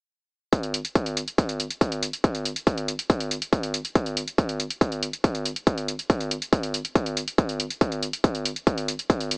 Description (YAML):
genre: trance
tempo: 140 BPM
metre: 4/4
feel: straight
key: none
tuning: none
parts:
  - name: electronic hi-hat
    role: drums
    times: 0.5-9.4 s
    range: none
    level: -29 LUFS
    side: equal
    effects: sidechain pumping on hats
  - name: electronic kick drum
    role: drums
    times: 0.5-9.2 s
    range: none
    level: -23 LUFS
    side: equal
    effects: distortion
room: little or no reverb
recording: small speaker sound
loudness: -23 LUFS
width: side -38 dB against mid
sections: 0.5-9.4 A section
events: none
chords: none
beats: | 0.53 0.95 1.38 1.81 | 2.24 2.67 3.10 3.53 | 3.96 4.38 4.81 5.24 | 5.67 6.10 6.53 6.96 | 7.38 7.81 8.24 8.67 | 9.10